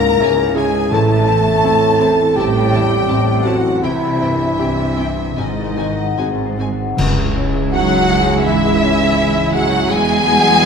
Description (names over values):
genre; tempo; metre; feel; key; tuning
cinematic, emotional film score for orchestra; 73-84 BPM; 4/4; rubato; C# minor from 7.0 s; A4 = 439 Hz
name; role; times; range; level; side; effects
dark clarinet; second line; 0.0-10.7 s; D#4 to A#4; -19 LUFS; right 1 dB; none
mellow flute section; second line; 0.0-10.7 s; D#5 to A#5; -23 LUFS; left 1 dB; none
warm symphonic violin section; second line; 0.0-10.7 s; E4 to A#5; -25 LUFS; left 2 dB; none
warm concert grand piano; accompaniment; 0.0-10.7 s; A1 to A4; -22 LUFS; left 1 dB; none
mellow French horn section; sustained chords; 0.0-10.7 s; D#3 to B4; -25 LUFS; left 3 dB; none
concert harp; arpeggios; 0.0-10.7 s; G#2 to G#5; -25 LUFS; left 7 dB; none
rich symphonic double bass section; bass; 0.0-10.7 s; G#1 to E2; -22 LUFS; right 3 dB; none
warm symphonic cello section; bass; 0.0-10.7 s; C#2 to G#3; -22 LUFS; right 3 dB; none
warm symphonic violin section; melody; 0.2-10.7 s; E5 to A5; -19 LUFS; left 3 dB; none
dark symphonic viola section; accompaniment; 0.2-10.7 s; F#3 to F#4; -24 LUFS; right 4 dB; none
clash cymbals and concert bass drum; percussion; 7.0-8.4 s; none; -24 LUFS; equal; none
timpani; percussion; 7.0-8.0 s; C#3; -24 LUFS; left 2 dB; none
room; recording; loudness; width
wet scoring stage reverb, RT60 1.9 s; minimal, uncompressed stereo recording; -13 LUFS; side -6 dB against mid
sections
0.0-7.0 A section; 7.0-10.7 B section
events
band accent 7.0-7.7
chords
0.0 C#m; 0.9 Am; 3.8 C; 5.4 G#7; 7.0 C#madd9; 9.9 Eadd9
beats
0.20 | 0.93 1.65 2.37 3.09 | 3.83 4.59 5.38 6.18 | 6.98 7.73 8.45 9.17 | 9.89 10.62